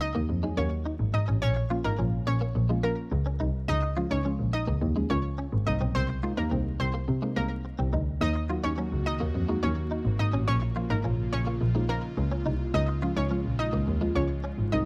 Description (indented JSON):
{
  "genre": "pop",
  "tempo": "106 BPM",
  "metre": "4/4",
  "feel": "straight",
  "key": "unclear",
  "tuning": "A4 = 440 Hz",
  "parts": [
    { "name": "analog pluck", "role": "melody", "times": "0.0-14.8 s", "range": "Bb3 to Eb5", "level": "-35 LUFS", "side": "equal", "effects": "chorus, slapback echo" },
    { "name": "deep mellow chord stab", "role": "accompaniment", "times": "0.0-14.9 s", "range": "F3 to Ab4", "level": "-36 LUFS", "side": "equal", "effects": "chorus, phaser" },
    { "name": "direct-recorded clean electric guitar", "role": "riff", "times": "0.0-14.8 s", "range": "Ab3 to F4", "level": "-38 LUFS", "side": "equal", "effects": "ensemble chorus" },
    { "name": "clear double bass", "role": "bass", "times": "0.1-14.8 s", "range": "Ab1 to C3", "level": "-30 LUFS", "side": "equal", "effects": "none" },
    { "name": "airy breathy pad", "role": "sustained chords", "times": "8.8-14.9 s", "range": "Bb2 to Gb4", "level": "-38 LUFS", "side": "equal", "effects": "chorus" }
  ],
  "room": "little or no reverb",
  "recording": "vinyl crackle",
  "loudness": "-28 LUFS",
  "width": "mono",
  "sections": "0.0-14.9 A section",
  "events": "none",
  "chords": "0.0 Ebm; 1.4 Bbm; 3.7 Db; 5.7 Abadd9; 8.2 Ebm; 10.5 Bbm; 12.7 Db"
}